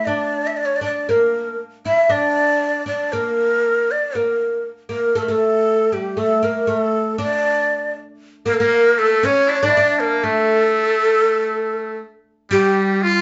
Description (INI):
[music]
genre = arabic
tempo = 118 BPM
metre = 4/4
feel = straight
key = unclear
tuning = A4 = 439 Hz
[part]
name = breathy ney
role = melody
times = 0.0-13.2 s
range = F4 to E5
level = -20 LUFS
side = equal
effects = none
[part]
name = oud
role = second line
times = 0.0-13.2 s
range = G3 to E4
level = -25 LUFS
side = equal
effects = none
[part]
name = trumpet with metal mute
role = second line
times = 8.5-13.2 s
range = G3 to F4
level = -24 LUFS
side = equal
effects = none
[sound]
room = wet studio ambience, RT60 0.5 s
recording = band playing live in one room, nothing above 7.8 kHz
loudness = -18 LUFS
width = mono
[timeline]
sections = 0.0-8.2 A section; 8.2-13.2 B section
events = none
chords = none